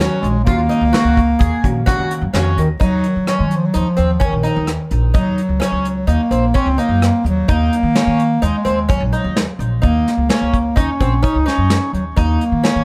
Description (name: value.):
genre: progressive instrumental, band music in an uneven meter.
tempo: 128 BPM.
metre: 5/4.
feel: straight.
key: Eb dorian.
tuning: A4 = 443 Hz.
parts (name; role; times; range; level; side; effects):
mellow bass clarinet; melody; 0.0-12.8 s; Eb3 to Eb4; -20 LUFS; equal; tape echo.
hollow-body jazz guitar; accompaniment; 0.0-2.8 s; Eb3 to Gb5; -25 LUFS; equal; none.
fingerpicked twelve-string acoustic guitar; arpeggios; 0.0-12.8 s; C4 to Ab4; -25 LUFS; equal; tape echo.
upright bass; bass; 0.0-12.8 s; Bb1 to Eb3; -21 LUFS; equal; none.
soft brush drum kit; drums; 0.0-12.8 s; hi-hat, kick drum, rim click, snare drum; -21 LUFS; equal; none.
room: little or no reverb.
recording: none.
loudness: -16 LUFS.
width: mono.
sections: 0.0-2.8 A section; 2.8-12.8 B section.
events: hollow-body jazz guitar fill 1.9-2.8.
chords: 0.0 Ebm7.